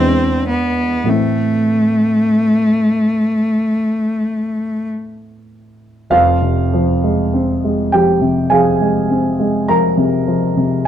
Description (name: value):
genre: classical, romantic duo for cello and grand piano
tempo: 47-52 BPM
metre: 4/4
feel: rubato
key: A minor, F minor from 6.1 s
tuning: A4 = 440 Hz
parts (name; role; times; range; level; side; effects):
- rich cello; melody; 0.0-4.9 s; A3 to B#3; -14 LUFS; left 1 dB; none
- warm baby grand piano; accompaniment; 0.0-10.9 s; F1 to Bb5; -14 LUFS; equal; none
room: light reverb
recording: dark, warm production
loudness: -13 LUFS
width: side -10 dB against mid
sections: 0.0-6.1 A section; 6.1-10.9 B section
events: none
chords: 0.0 E7; 1.1 Am; 6.1 Fm